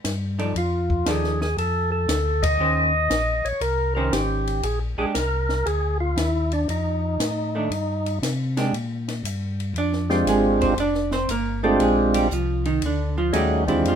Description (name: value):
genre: soul jazz organ trio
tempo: 117 BPM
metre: 4/4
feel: swing 67% on 8ths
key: Bb mixolydian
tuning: A4 = 440 Hz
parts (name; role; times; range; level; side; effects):
- mellow tonewheel organ; bass; 0.0-14.0 s; F1 to C3; -25 LUFS; left 1 dB; slow rotary speaker
- compact cocktail drum kit; drums; 0.0-14.0 s; hi-hat, kick drum, ride cymbal, snare drum; -31 LUFS; left 2 dB; none
- vintage hollow-body jazz guitar; accompaniment; 0.4-14.0 s; D3 to D5; -25 LUFS; right 3 dB; none
- percussive tonewheel organ; melody; 0.6-14.0 s; Ab3 to Eb5; -22 LUFS; right 1 dB; slow rotary speaker, overdrive
room: light reverb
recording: minimal, uncompressed stereo recording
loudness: -20 LUFS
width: side -8 dB against mid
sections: 0.0-8.7 A section; 8.7-14.0 B section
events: band accent 2.3; hollow-body jazz guitar solo 8.7-14.0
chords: 0.0 Bb6 (rootless); 0.6 F6; 2.6 Eb6; 4.6 Bb9; 6.7 F13; 8.7 Bb13